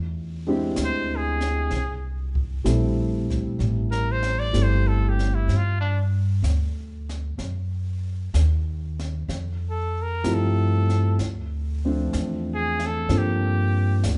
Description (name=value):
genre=jazz ballad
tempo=63 BPM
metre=4/4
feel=swing 69% on 8ths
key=unclear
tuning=A4 = 439 Hz
part: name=upright bass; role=bass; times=0.0-14.2 s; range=G1 to G2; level=-26 LUFS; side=equal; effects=none
part: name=dark upright piano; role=accompaniment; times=0.5-14.2 s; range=F3 to A4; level=-29 LUFS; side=equal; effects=none
part: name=clear trumpet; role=melody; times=0.8-14.1 s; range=D4 to D5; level=-31 LUFS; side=equal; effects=none
part: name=jazz brush drum kit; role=drums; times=0.8-14.2 s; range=brushed snare drum, hi-hat, kick drum, snare drum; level=-36 LUFS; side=equal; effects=none
room=moderate large studio reverb, RT60 1.4 s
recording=band playing live in one room, nothing above 10.7 kHz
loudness=-24 LUFS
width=mono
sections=0.0-14.2 A section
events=trumpet solo 0.0-14.2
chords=0.0 E7alt; 1.7 Am7; 5.5 G5; 7.4 Ebm; 9.3 Fmaj9; 11.2 Dm9; 13.1 Gm11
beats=0.77 | 1.71 2.65 3.59 4.54 | 5.48 6.43 7.38 8.34 | 9.29 10.24 11.19 12.14 | 13.09 14.03